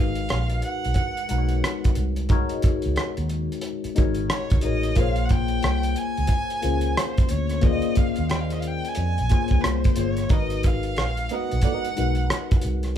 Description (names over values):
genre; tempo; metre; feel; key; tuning
R&B, neo-soul; 90 BPM; 4/4; swing 64% on 16ths; unclear; A4 = 440 Hz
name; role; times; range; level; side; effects
rich violin; melody; 0.0-12.6 s; B4 to G#5; -30 LUFS; right 2 dB; none
tine electric piano; accompaniment; 0.0-13.0 s; G#3 to D#5; -28 LUFS; left 7 dB; phaser
vintage muted fingered electric bass; bass; 0.0-13.0 s; G1 to E#2; -26 LUFS; right 1 dB; none
cloth-damped thuddy drum kit; drums; 0.2-12.9 s; hi-hat, kick drum, rim click; -23 LUFS; right 1 dB; none
flamenco guitar; second line; 11.0-11.9 s; B3 to D#5; -29 LUFS; right 8 dB; none
room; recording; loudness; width
light reverb; band playing live in one room; -21 LUFS; side -10 dB against mid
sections
0.0-13.0 A section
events
none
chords
0.0 G#m9; 5.0 A#m9; 10.3 G#m9